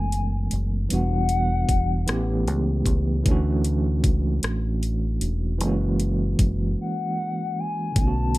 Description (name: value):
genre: slow six-eight R&B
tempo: 51 BPM (dotted quarters)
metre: 6/8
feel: straight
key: unclear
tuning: A4 = 440 Hz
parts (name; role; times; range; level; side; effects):
- hollow clarinet-like synth lead; melody; 0.0-2.4, 6.8-8.4 s; F#5 to A5; -28 LUFS; left 4 dB; chorus, slapback echo, plate reverb
- overdriven tine electric piano; accompaniment; 0.0-8.4 s; D3 to G4; -26 LUFS; right 2 dB; medium tremolo, plate reverb
- deep dub fingered electric bass; bass; 0.0-8.4 s; E1 to D2; -24 LUFS; equal; none
- smooth R&B drum kit; drums; 0.1-8.4 s; hi-hat, kick drum, rim click; -23 LUFS; equal; none
room: light reverb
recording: none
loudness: -21 LUFS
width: side -18 dB against mid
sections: 0.0-8.4 A section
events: break 6.8-8.0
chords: 0.0 Amaj7; 0.9 Em7; 2.1 A7; 3.3 Dmaj7; 5.6 F#7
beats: | 0.90 2.08 | 3.26 4.43 | 5.61 6.79 | 7.96